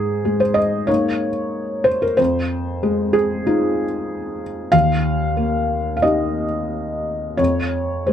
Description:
neoclassical minimalist piano; 87-96 BPM; 4/4; rubato; Ab major; A4 = 439 Hz
felt-muted upright piano; solo; 0.0-8.1 s; Eb2 to F5; -17 LUFS; equal
light reverb; close, detailed microphones; -17 LUFS; side -9 dB against mid
0.0-8.1 A section
0.0 Absus2; 2.2 Fm7; 4.7 Eb; 7.4 Db/F

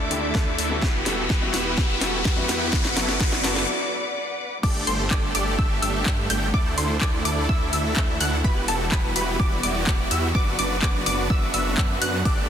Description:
EDM, festival progressive house; 126 BPM; 4/4; straight; G major; A4 = 439 Hz
clear grand piano; accompaniment; 0.0-3.7 s; D3 to A4; -32 LUFS; left 3 dB; sidechain pumping, digital delay
clear studio string section; sustained chords; 0.0-12.5 s; D3 to E6; -31 LUFS; left 2 dB; sidechain pumping
supersaw chords; riff; 0.0-12.5 s; A3 to G5; -27 LUFS; right 2 dB; sidechain pumping, low-pass filter, digital delay
detuned saw bass; bass; 0.0-12.5 s; E1 to G2; -29 LUFS; equal; sidechain pumping
riser; sound effects; 0.0-3.7 s; -29 LUFS; left 2 dB
house drum kit; drums; 0.1-12.3 s; crash cymbal, handclaps, hi-hat, ride cymbal, snare drum; -28 LUFS; left 1 dB; overdrive
electronic kick drum; drums; 0.3-12.3 s; -23 LUFS; equal; overdrive
wide unison pluck; arpeggios; 4.6-12.5 s; A5 to G6; -29 LUFS; equal; sidechain pumping, digital delay
moderate lush hall reverb, RT60 1.9 s; dense, heavily limited modern master; -20 LUFS; side -8 dB against mid
0.0-4.6 A section; 4.6-12.5 B section
build-up 0.0-4.6; drum fill 0.0-3.7; riser 0.0-3.7; break 3.7-4.6; drop 4.6-12.5
0.0 Dsus2; 0.8 Emadd9; 2.7 Bm/F#; 4.6 Gsus2; 6.5 Dsus2; 8.4 Emadd9; 10.3 Bm/F#

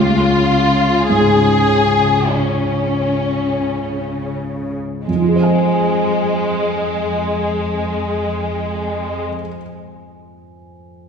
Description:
cinematic; free time; F minor; A4 = 441 Hz
rich studio violin section; second line; 0.0-9.3 s; Ab3 to Ab4; -18 LUFS; left 2 dB
felt-muted upright piano; accompaniment; 0.0-11.1 s; Db2 to Ab5; -19 LUFS; right 1 dB
rich studio cello section; bass; 0.0-9.3 s; F2 to Db3; -23 LUFS; left 1 dB
wet scoring stage reverb, RT60 2.0 s; heard from further back in the room; -15 LUFS; side -6 dB against mid
0.0-5.1 A section; 5.1-10.6 B section
slowing down 0.0-5.1
0.0 Db; 5.1 Fm

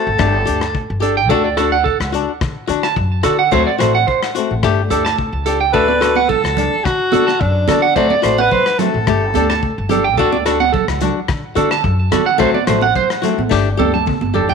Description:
highlife guitar band; 108 BPM; 4/4; swing 53% on 16ths; D major; A4 = 440 Hz
breathy alto saxophone; melody; 0.0-1.0, 5.7-9.9 s; D4 to D5; -17 LUFS; left 1 dB
flamenco guitar; accompaniment; 0.0-14.5 s; F#3 to G4; -19 LUFS; left 12 dB
upright bass; bass; 0.1-14.4 s; G1 to D3; -20 LUFS; left 1 dB
crunchy breakbeat drum kit; drums; 0.2-14.5 s; hi-hat, kick drum, rim click, snare drum, toms; -24 LUFS; left 5 dB
electric guitar at the edge of break-up; arpeggios; 1.0-14.5 s; A4 to A5; -17 LUFS; right 9 dB; tape echo
congas; percussion; 5.9-14.5 s; -22 LUFS; right 12 dB
moderate echo chamber reverb, RT60 1.3 s, small room ambience; 1960s-style stereo with parts hard left and right; -13 LUFS; side -6 dB against mid
0.0-14.5 A section
drum fill 13.5-14.5
0.2 Gsus2; 1.3 D; 3.5 D7; 4.6 Gsus2; 5.7 D; 8.0 D7; 9.1 Gsus2; 10.2 D; 12.4 D7; 13.5 Gsus2

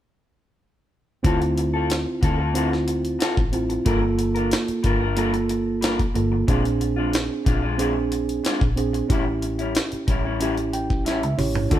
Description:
straight-eighth soul blues; 92 BPM; 4/4; straight; D minor; A4 = 440 Hz
mellow tine electric piano; accompaniment; 1.2-11.8 s; Bb3 to G5; -24 LUFS; right 3 dB
electric guitar through a small old amp; stabs; 1.2-11.8 s; A2 to Bb4; -28 LUFS; left 4 dB
vintage muted fingered electric bass; bass; 1.2-11.8 s; G1 to D2; -26 LUFS; left 1 dB
jungle sampler-style drum kit; drums; 1.2-11.8 s; hi-hat, kick drum, snare drum, toms; -23 LUFS; equal
moderate stone room reverb, RT60 1.3 s; band playing live in one room; -20 LUFS; side -12 dB against mid
1.2-11.7 A section
tine electric piano fill 10.4-11.7; drum fill 11.1-11.7
1.2 Dm7; 3.9 Gm7; 6.5 Bb7; 9.1 A7

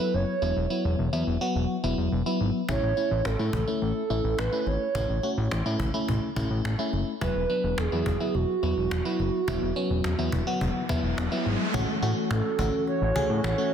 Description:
synth-pop; 106 BPM; 4/4; straight; A major; A4 = 440 Hz
hollow clarinet-like synth lead; melody; 0.0-13.7 s; F#4 to C#5; -29 LUFS; right 5 dB; chorus, tape echo
FM electric piano; accompaniment; 0.0-13.7 s; F#3 to G#4; -29 LUFS; left 2 dB; chorus, phaser
fat analog bass; bass; 0.1-13.5 s; E1 to A2; -28 LUFS; equal
cajon; drums; 2.7-13.6 s; -34 LUFS; equal
riser; sound effects; 10.5-11.7 s; -34 LUFS; equal
brassy analog pad; sustained chords; 11.7-13.7 s; E3 to F#4; -32 LUFS; left 1 dB; chorus
moderate plate reverb, RT60 2.2 s; dense, heavily limited modern master; -24 LUFS; side -8 dB against mid
0.0-11.7 A section; 11.7-13.7 B section
riser 10.5-11.7
0.0 Esus2; 2.7 A; 7.2 Esus2; 11.7 A6

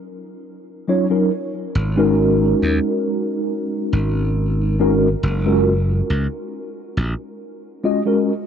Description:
vaporwave; 69 BPM; 4/4; straight; A4 = 440 Hz
mellow tine electric piano; accompaniment; 0.9-8.3 s; Gb3 to Eb5; -19 LUFS; equal; medium stereo tremolo, ensemble chorus, vintage 12-bit sampler grit, tape echo
glassy slap bass; bass; 1.8-7.1 s; Gb1 to Eb2; -19 LUFS; equal
moderate huge ambient reverb, RT60 8.0 s; cassette tape; -17 LUFS; side -8 dB against mid
0.0-8.5 A section
0.0 Ebm9; 1.3 Ab7sus4; 5.2 Gbmaj9

